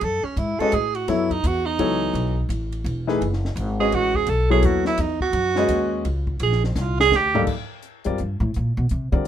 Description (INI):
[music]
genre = modal jazz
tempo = 169 BPM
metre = 3/4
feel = swing 63% on 8ths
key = B mixolydian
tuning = A4 = 440 Hz
[part]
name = warm tenor saxophone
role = second line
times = 0.0-7.4 s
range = B#3 to A4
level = -22 LUFS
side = right 5 dB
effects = none
[part]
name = upright bass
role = bass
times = 0.0-9.3 s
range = E1 to D3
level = -23 LUFS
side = equal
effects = none
[part]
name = compact cocktail drum kit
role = drums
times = 0.0-9.3 s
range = crash cymbal, hi-hat, kick drum, ride cymbal, snare drum, toms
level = -32 LUFS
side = left 1 dB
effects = none
[part]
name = warm baby grand piano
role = accompaniment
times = 0.6-9.2 s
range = G2 to E#5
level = -23 LUFS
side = left 4 dB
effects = none
[sound]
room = light reverb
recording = minimal, uncompressed stereo recording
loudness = -19 LUFS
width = side -10 dB against mid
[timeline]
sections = 0.0-7.5 A section; 7.5-9.3 A section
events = tenor saxophone solo 0.0-7.5; drum fill 6.8-7.5; upright bass solo 7.5-9.3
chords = 0.0 B13sus4; 6.4 A#69; 7.5 Ebmaj9 (rootless)